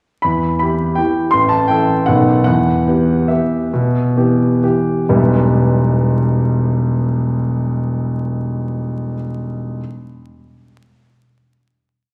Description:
classical, piano waltz; 127-174 BPM; 3/4; rubato; E minor; A4 = 440 Hz
warm concert grand piano; solo; 0.2-9.8 s; E1 to C6; -16 LUFS; equal
wet concert hall reverb, RT60 2.1 s; vinyl crackle; -16 LUFS; mono
0.2-5.1 A section; 5.1-7.7 final chord
slowing down 1.9-5.1
0.2 Em; 1.3 A5; 2.1 B7; 2.5 Em
| 0.23 0.61 0.97 | 1.33 1.69 2.07 | 2.46 2.87 3.30 | 3.74 4.17 4.62 | 5.08 5.51 5.95 | 6.38 6.81 7.24

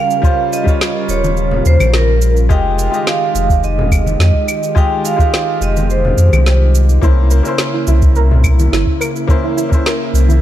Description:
sunset chillout; 106 BPM; 4/4; straight; F minor; A4 = 440 Hz
vibraphone with medium hard mallets; melody; 0.0-6.7 s; Bb4 to G5; -18 LUFS; right 2 dB; ping-pong delay
bright baby grand piano; accompaniment; 0.0-10.4 s; G3 to Eb5; -22 LUFS; moving between left 6 dB and right 2 dB; auto-pan, ping-pong delay
soft string machine; sustained chords; 0.0-10.4 s; Db3 to Bb4; -22 LUFS; equal; ensemble chorus
electronic cabasa, snare drum and claves; drums; 0.1-10.4 s; -21 LUFS; equal
electronic kick drum; drums; 0.2-9.8 s; -13 LUFS; equal
warm sub bass; bass; 1.1-10.4 s; Eb1 to F2; -12 LUFS; equal
congas; percussion; 1.2-10.4 s; -22 LUFS; left 2 dB
soft round pluck; arpeggios; 7.0-10.4 s; E4 to Bb4; -21 LUFS; right 4 dB; lush chorus, ping-pong delay
light reverb; dark, warm production; -11 LUFS; side -12 dB against mid
0.0-10.4 A section
0.0 Eb13; 2.5 Fm9; 7.0 C7b9
| 0.24 0.80 1.37 1.94 | 2.50 3.07 3.63 4.20 | 4.76 5.33 5.90 6.46 | 7.03 7.59 8.16 8.73 | 9.29 9.86

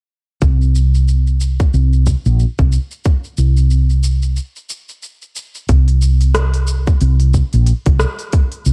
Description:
organic downtempo; 91 BPM; 4/4; swing 58% on 16ths; A4 = 441 Hz
woody fretless electric bass; bass; 0.4-8.7 s; Bb1 to C2; -14 LUFS; equal; tube saturation, ensemble chorus
electronic kick drum; drums; 0.4-8.5 s; -16 LUFS; equal; studio reverb
organic electronic drum kit; drums; 0.4-8.7 s; hi-hat, rim click, shaker; -28 LUFS; equal; studio reverb
little or no reverb; dark, warm production; -15 LUFS; mono
0.4-5.7 A section; 5.7-8.7 B section
filter sweep on fretless electric bass 0.4-5.7; break 4.4-5.7
| 0.42 1.08 1.74 2.40 | 3.05 3.71 4.37 5.03 | 5.69 6.35 7.01 7.67 | 8.33

